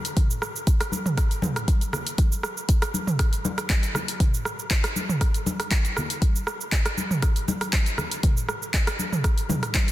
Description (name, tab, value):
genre	house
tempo	119 BPM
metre	4/4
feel	swing 53% on 16ths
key	none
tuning	none
part	deep house drum kit	drums	0.0-9.9 s	cabasa, handclaps, hi-hat, rim click, toms	-26 LUFS	right 1 dB	small room ambience
part	electronic kick drum	drums	0.2-9.9 s	none	-22 LUFS	equal	small room ambience
part	congas	percussion	0.9-9.9 s	none	-31 LUFS	left 3 dB	none
room	light reverb, digital ambience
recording	dense, heavily limited modern master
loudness	-22 LUFS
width	side -15 dB against mid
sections	0.0-9.9 A section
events	none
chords	none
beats	0.17 0.67 | 1.18 1.68 2.18 2.69 | 3.19 3.70 4.20 4.70 | 5.21 5.71 6.22 6.72 | 7.22 7.73 8.23 8.74 | 9.24 9.75